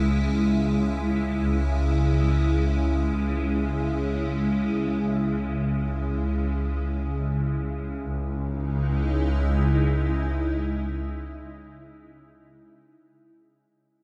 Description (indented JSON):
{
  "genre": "ambient",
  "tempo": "free time",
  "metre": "none",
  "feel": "none",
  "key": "C# minor",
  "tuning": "A4 = 440 Hz",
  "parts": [
    { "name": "evolving wavetable pad", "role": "sustained chords", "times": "0.0-11.8 s", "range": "C#3 to E4", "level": "-28 LUFS", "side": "equal", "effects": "ensemble chorus, built-in reverb, phaser" },
    { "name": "warm studio double bass section", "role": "bass", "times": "0.0-11.0 s", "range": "C#2", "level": "-29 LUFS", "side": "equal", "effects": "tube saturation" }
  ],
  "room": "wet lush hall reverb, RT60 3.2 s",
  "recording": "dark, warm production",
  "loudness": "-25 LUFS",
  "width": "mono",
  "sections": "0.0-8.0 A section; 8.0-12.0 B section",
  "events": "none",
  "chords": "0.0 C#m"
}